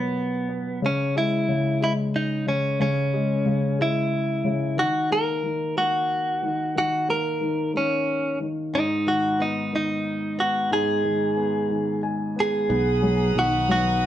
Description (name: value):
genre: six-eight pop ballad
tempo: 61 BPM (dotted quarters)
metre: 6/8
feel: straight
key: G# minor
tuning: A4 = 440 Hz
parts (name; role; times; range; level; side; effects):
- direct-recorded clean electric guitar; melody; 0.0-14.1 s; B3 to A#4; -23 LUFS; right 1 dB; none
- warm grand piano; accompaniment; 0.0-14.1 s; G#2 to G#5; -26 LUFS; left 2 dB; none
- warm studio string section; sustained chords; 12.7-14.1 s; B4 to D#6; -31 LUFS; left 1 dB; none
- sustaining fretless electric bass; bass; 12.7-14.1 s; B1; -24 LUFS; right 1 dB; none
room: moderate studio reverb, RT60 0.8 s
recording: band playing live in one room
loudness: -21 LUFS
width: side -11 dB against mid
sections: 0.0-12.7 A section; 12.7-14.1 B section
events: grand piano fill 11.7-12.7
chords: 0.0 Bmaj7(no3); 0.8 C#m; 4.8 D#m; 8.7 G#m; 12.7 Bmaj7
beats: | 0.82 1.81 | 2.80 3.79 | 4.78 5.77 | 6.76 7.75 | 8.74 9.73 | 10.72 11.71 | 12.70 13.69